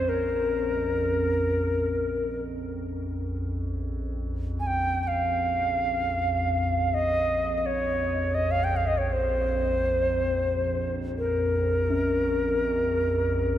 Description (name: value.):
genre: world meditative, free-time meditation music.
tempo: free time.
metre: none.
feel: none.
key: Bb minor.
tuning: A4 = 440 Hz.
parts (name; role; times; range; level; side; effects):
Native American-style cedar flute; melody; 0.0-13.6 s; Bb4 to Ab5; -25 LUFS; equal; tape echo.
warbly tape-like pad; drone; 0.0-13.6 s; Bb1 to F2; -29 LUFS; equal; chorus, built-in reverb, phaser.
quartz singing bowl; texture; 0.0-3.8, 11.9-13.6 s; Db4; -37 LUFS; left 1 dB; none.
room: moderate huge ambient reverb, RT60 4.4 s.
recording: none.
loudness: -24 LUFS.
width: side -11 dB against mid.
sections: 0.0-3.4 A section; 3.4-13.6 A section.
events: none.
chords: none.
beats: free time.